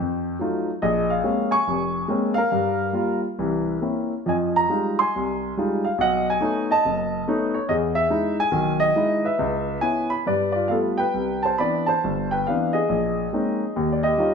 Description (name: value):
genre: solo jazz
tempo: 140 BPM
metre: 4/4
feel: swing 65% on 8ths, rubato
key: unclear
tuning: A4 = 440 Hz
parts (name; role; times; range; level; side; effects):
- warm grand piano; solo; 0.0-14.3 s; F1 to Db6; -20 LUFS; equal; none
room: wet large studio reverb, RT60 1.3 s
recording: band playing live in one room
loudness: -20 LUFS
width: side -6 dB against mid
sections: 0.0-11.2 A section; 11.2-14.3 B section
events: none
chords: 0.0 F7b9; 0.8 Bbm9; 2.5 Gm7; 3.4 C7b9; 4.3 Fm9; 6.0 B9; 7.7 Emaj7; 9.4 Dbm7; 10.3 G9; 11.2 Cmaj9; 12.9 Bbm11; 13.7 Eb9